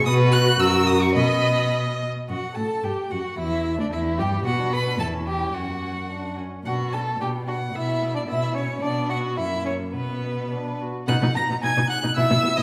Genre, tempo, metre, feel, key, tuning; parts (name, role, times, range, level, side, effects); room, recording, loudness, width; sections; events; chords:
quick classical-period movement for string quartet; 109 BPM; 2/4; rubato; B minor; A4 = 440 Hz
rich violin; melody; 0.0-12.6 s; B4 to A#6; -30 LUFS; equal
rich viola; accompaniment; 0.0-12.6 s; A#3 to D#5; -31 LUFS; equal
warm violin; second line; 0.1-12.6 s; B3 to A#5; -30 LUFS; equal
warm cello; bass; 0.1-12.6 s; D2 to B2; -27 LUFS; equal
wet recital hall reverb, RT60 1.3 s; recorded in a church or concert hall; -24 LUFS; mono
0.0-2.3 A section; 2.3-11.1 A section; 11.1-12.6 A section
0.1 B5; 0.6 F#7; 1.2 B; 2.3 F#m; 3.4 Em; 4.5 Bm; 5.0 C#dim/E; 5.5 F#; 6.7 Bm; 9.4 F#7; 9.9 Bm; 11.1 B